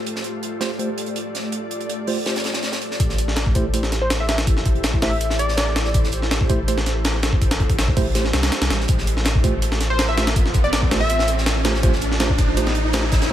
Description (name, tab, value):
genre	drum and bass, jungle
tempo	163 BPM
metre	4/4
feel	straight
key	A minor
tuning	A4 = 440 Hz
part	ethereal airy pad	sustained chords	0.0-13.3 s	A3 to D5	-29 LUFS	left 1 dB	ensemble chorus, built-in reverb
part	tight funk drum kit	drums	0.1-13.3 s	hi-hat, snare drum	-30 LUFS	right 2 dB	high-pass filter on hats, studio reverb, high-pass filter on snare, high-pass filter on room
part	mellow tine electric piano	stabs	0.6-13.3 s	A3 to C5	-27 LUFS	right 3 dB	medium stereo tremolo, dub echo
part	saturated sub bass	bass	3.0-13.3 s	A1 to C2	-23 LUFS	equal	none
part	breakbeat sampler-style drum kit	drums	3.0-13.3 s	hi-hat, kick drum, snare drum	-20 LUFS	equal	studio reverb
part	riser	sound effects	6.1-13.3 s	none	-29 LUFS	right 1 dB	none
part	plucky unison lead	melody	4.0-6.1, 9.9-11.3 s	C5 to E5	-25 LUFS	equal	dub echo
room	light reverb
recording	none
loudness	-18 LUFS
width	side -12 dB against mid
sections	0.0-3.0 A section; 3.0-13.3 B section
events	build-up 3.0-13.3; filter sweep on digital synth lead 3.0-13.3; riser 6.1-13.3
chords	0.0 Fadd9/A; 3.0 Am7; 8.9 Fadd9/A